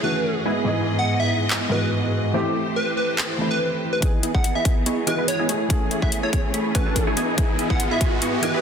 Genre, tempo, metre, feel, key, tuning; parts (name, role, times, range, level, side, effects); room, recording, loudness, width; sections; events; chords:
future bass; 143 BPM; 4/4; swing 54% on 16ths, half-time; E major; A4 = 441 Hz
plucky unison lead; melody; 0.0-8.6 s; B4 to F#5; -27 LUFS; equal; cassette tape, sidechain pumping, dub echo
felt-muted upright piano; accompaniment; 0.0-8.6 s; G#2 to D#5; -27 LUFS; equal; sidechain pumping
rich studio string section; sustained chords; 0.0-8.6 s; G#2 to D#5; -32 LUFS; left 1 dB; sidechain pumping, low-pass filter
supersaw stab; riff; 0.0-8.6 s; G#2 to C#6; -25 LUFS; right 1 dB; sidechain pumping, low-pass filter
big-room dance drum kit; drums; 1.5-8.5 s; handclaps, hi-hat; -27 LUFS; left 1 dB; high-pass filter on snare, studio reverb, high-pass filter on hats
electronic kick drum; drums; 4.0-8.1 s; -22 LUFS; equal; studio reverb
riser; sound effects; 4.8-8.6 s; -31 LUFS; right 1 dB
moderate lush hall reverb, RT60 1.9 s; dense, heavily limited modern master; -19 LUFS; side -7 dB against mid
0.0-4.0 A section; 4.0-8.6 B section
build-up 4.0-8.6; filter sweep on supersaw synth 4.0-8.6; riser 4.8-8.6
0.5 Emaj7/G#; 2.3 C6; 4.0 Emaj7; 5.5 Amaj7; 7.2 Emaj7/G#